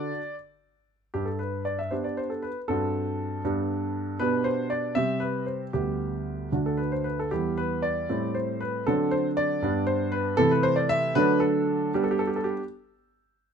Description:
classical-period piano sonatina; 78 BPM (dotted quarters); 6/8; rubato; G major; A4 = 440 Hz
warm concert grand piano; solo; 0.0-12.6 s; D2 to E5; -24 LUFS; right 1 dB
little or no reverb; close, detailed microphones; -24 LUFS; side -7 dB against mid
0.0-1.1 A section; 1.1-13.5 B section
0.0 D; 1.1 G; 2.7 D7/G; 3.5 G; 4.2 G/B; 5.0 C5; 5.7 G/D; 6.5 D; 7.3 Em; 8.1 Am7; 8.9 D7; 9.6 G; 10.4 Am/C; 11.2 D; 11.9 G

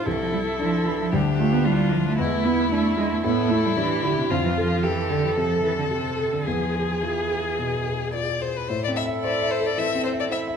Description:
quick classical-period movement for piano quartet; 112 BPM; 4/4; rubato; A minor; A4 = 439 Hz
rich violin; melody; 0.0-10.4 s; E4 to E5; -27 LUFS; left 5 dB
rich viola; accompaniment; 0.0-10.6 s; D4 to A4; -30 LUFS; right 3 dB
warm concert grand piano; accompaniment; 0.0-10.6 s; C2 to E5; -26 LUFS; left 2 dB
rich cello; second line; 0.1-10.6 s; C3 to E4; -26 LUFS; right 5 dB
wet recital hall reverb, RT60 1.6 s; minimal, uncompressed stereo recording, lossy compression artefacts; -21 LUFS; side -7 dB against mid
0.0-8.7 A section; 8.7-10.6 B section
0.1 Am/C; 1.1 Dmadd11; 2.2 Eadd11; 3.2 A5; 4.3 F; 6.5 E; 8.7 Am

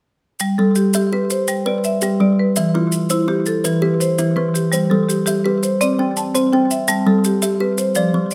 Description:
southern african traditional, mbira-style interlocking cycle; 111 BPM (dotted quarters); 12/8; straight; G mixolydian; A4 = 440 Hz
marimba with hard mallets; arpeggios; 0.4-8.3 s; E3 to A5; -20 LUFS; equal
maracas; percussion; 0.4-8.3 s; -28 LUFS; equal
kalimba; arpeggios; 0.6-8.3 s; E3 to A5; -21 LUFS; equal; slapback echo
light reverb; close, detailed microphones; -17 LUFS; mono
0.4-8.3 A section
0.4 G; 2.6 Em; 4.7 G; 5.8 C; 6.9 G

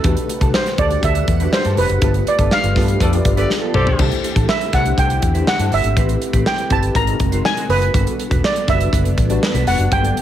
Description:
polished 1980s jazz-funk pop; 122 BPM; 4/4; straight; G major; A4 = 441 Hz
steel pan; melody; 0.0-10.2 s; A4 to Bb5; -20 LUFS; right 2 dB
mellow tine electric piano; accompaniment; 0.0-10.2 s; F#3 to D5; -23 LUFS; left 2 dB; medium stereo tremolo, ensemble chorus
soft string machine; sustained chords; 0.0-10.2 s; C3 to F#5; -30 LUFS; equal
mellow electric guitar; riff; 0.0-10.2 s; B3 to D5; -29 LUFS; right 4 dB; ensemble chorus
vintage muted fingered electric bass; bass; 0.0-10.1 s; E1 to G2; -19 LUFS; equal
modern studio drum kit; drums; 0.0-10.2 s; crash cymbal, hi-hat, kick drum, snare drum, toms; -19 LUFS; equal; gated reverb
warm horn section; second line; 3.0-4.1 s; G4 to D5; -24 LUFS; left 1 dB
studio reverb; -14 LUFS; side -11 dB against mid
0.0-10.2 A section
band accent 2.0-4.0; drum fill 3.5-4.0
0.0 Em11; 2.0 G9; 4.0 C69; 6.0 Am9; 7.0 Ab9; 7.9 Gmaj7

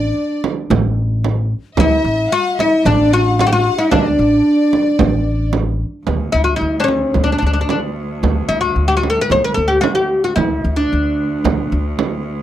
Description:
Arabic maqam ensemble; 112 BPM; 4/4; straight; D maqam huzam; A4 = 440 Hz
oud; melody; 0.0-11.8 s; C4+50c to C5+50c; -16 LUFS; left 1 dB
breathy mellow low ney; second line; 0.0-5.5 s; D5 to F#5-40c; -23 LUFS; left 8 dB
clear studio violin section; second line; 0.0-5.5 s; D5 to F#5-50c; -26 LUFS; equal
upright bass; bass; 0.0-11.9 s; A1 to D2; -18 LUFS; equal
frame drum; percussion; 0.4-12.1 s; -19 LUFS; right 6 dB
bright cello; drone; 6.1-12.4 s; D2; -26 LUFS; right 1 dB; stereo widening
little or no reverb; dry, close 1970s-style studio recording; -13 LUFS; side -12 dB against mid
0.0-6.1 A section; 6.1-12.4 B section

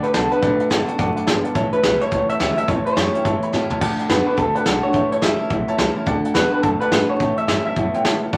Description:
rockabilly; 213 BPM; 4/4; swing 62% on 8ths; D major; A4 = 441 Hz
electric guitar through a small old amp; melody; 0.0-8.2 s; A4 to E5; -23 LUFS; equal
clear upright piano; accompaniment; 0.0-8.4 s; C#5 to B5; -30 LUFS; equal
picked steel-string acoustic guitar; accompaniment; 0.0-8.4 s; E2 to F#4; -29 LUFS; equal
electric guitar through a small old amp; riff; 0.0-8.4 s; A2 to B3; -28 LUFS; equal
upright bass; bass; 0.0-8.4 s; F#1 to A2; -31 LUFS; equal
soft brush drum kit; drums; 0.0-8.4 s; crash cymbal, hi-hat, kick drum, snare drum, toms; -25 LUFS; equal
wet club reverb, RT60 0.6 s; vinyl crackle; -19 LUFS; mono
0.0-3.8 A section; 3.8-8.4 B section
drum fill 3.5; upright piano fill 5.6-6.1
0.0 D; 1.6 A7; 3.8 D; 4.9 A7; 6.1 D; 7.2 A7

